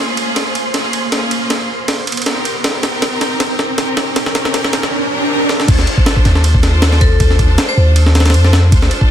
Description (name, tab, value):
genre	drum and bass, jungle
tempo	158 BPM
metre	4/4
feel	swing 54% on 16ths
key	D phrygian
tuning	A4 = 442 Hz
part	bright studio string section	sustained chords	0.0-9.1 s	Bb3 to C5	-20 LUFS	left 1 dB	none
part	riser	sound effects	0.0-5.7 s	none	-21 LUFS	right 2 dB	none
part	wind-like tuned noise texture	texture	0.0-4.9 s	C5 to C6	-27 LUFS	left 1 dB	built-in reverb
part	breakbeat sampler-style drum kit	drums	0.2-9.1 s	crash cymbal, kick drum, ride cymbal, snare drum	-15 LUFS	equal	high-pass filter on cymbals, small room ambience, high-pass filter on kick, high-pass filter on snare
part	long sustained 808-style bass	bass	5.7-8.9 s	D2 to F2	-10 LUFS	equal	tube saturation
part	vibraphone with hard mallets	melody	7.0-7.8 s	A4 to C5	-21 LUFS	left 2 dB	dub echo
room	light reverb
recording	dense, heavily limited modern master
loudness	-11 LUFS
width	side -10 dB against mid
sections	0.0-5.7 A section; 5.7-9.1 B section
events	build-up 0.0-5.7; drum fill 0.0-4.9, 5.5; riser 0.0-5.7; drop 5.7-9.1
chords	0.0 Bbm7; 1.9 Cm7; 5.7 Dm7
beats	0.37 0.75 | 1.13 1.51 1.89 2.27 | 2.65 3.03 3.41 3.79 | 4.17 4.55 4.92 5.30 | 5.68 6.07 6.44 6.82 | 7.20 7.58 7.96 8.34 | 8.72 9.10